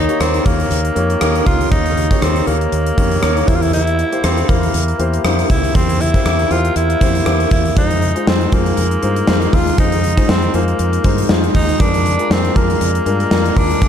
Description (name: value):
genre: 1980s-style pop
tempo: 119 BPM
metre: 4/4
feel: swing 55% on 16ths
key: F minor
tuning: A4 = 440 Hz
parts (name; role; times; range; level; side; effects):
- raspy tenor saxophone; melody; 0.0-13.9 s; Bb3 to F4; -19 LUFS; right 1 dB; digital delay
- warm concert grand piano; accompaniment; 0.0-13.9 s; Eb3 to Db5; -20 LUFS; left 3 dB; none
- fingered electric bass; bass; 0.0-13.9 s; Db2 to G2; -18 LUFS; equal; none
- gated 80s drum kit; drums; 0.1-13.9 s; hi-hat, kick drum, rim click, snare drum; -16 LUFS; equal; none
room: light reverb, studio reverb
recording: dark, warm production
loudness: -13 LUFS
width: side -8 dB against mid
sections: 0.0-13.9 A section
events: none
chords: 0.0 Eb7; 3.5 C7; 7.8 Fm7; 11.8 Bb7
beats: 0.20 0.71 1.21 | 1.72 2.22 2.73 3.23 | 3.73 4.24 4.74 5.25 | 5.75 6.25 6.76 7.26 | 7.77 8.27 8.78 9.28 | 9.78 10.29 10.79 11.30 | 11.80 12.30 12.81 13.31 | 13.82